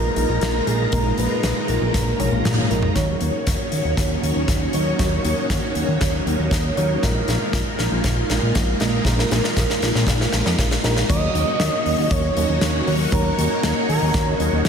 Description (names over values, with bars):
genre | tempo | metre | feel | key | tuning
synthwave | 118 BPM | 4/4 | straight | Eb minor | A4 = 440 Hz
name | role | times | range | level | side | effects
expressive synth lead | melody | 0.0-2.7, 11.1-14.6 s | Ab4 to Eb5 | -25 LUFS | right 1 dB | chorus, ping-pong delay
string machine, full ensemble | sustained chords | 0.0-14.7 s | Ab3 to Bb5 | -24 LUFS | equal | phaser, ensemble chorus, sidechain pumping
FM electric piano with soft pad layer | stabs | 0.0-14.7 s | Bb2 to Eb5 | -27 LUFS | right 1 dB | chorus, low-pass filter, ping-pong delay
fat analog bass | bass | 0.0-14.7 s | Bb1 to F2 | -22 LUFS | equal | none
huge arena drum kit | drums | 0.2-14.7 s | crash cymbal, hi-hat, snare drum, toms | -25 LUFS | left 1 dB | high-pass filter on hats, high-pass filter on toms, high-pass filter on cymbals, high-pass filter on snare, high-pass filter on room
kick drum | drums | 0.9-14.2 s | none | -26 LUFS | equal | none
room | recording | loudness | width
moderate lush hall reverb, RT60 2.0 s, small room ambience | dreamy mix soaked in reverb | -18 LUFS | side -7 dB against mid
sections
0.0-3.0 A section; 3.0-11.1 B section; 11.1-14.7 C section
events
drum fill 2.2-3.0, 3.0-11.1; band accent 2.5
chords
0.0 Bb7sus4; 3.0 Ebm7; 7.0 Bb7sus4; 11.1 Ebm7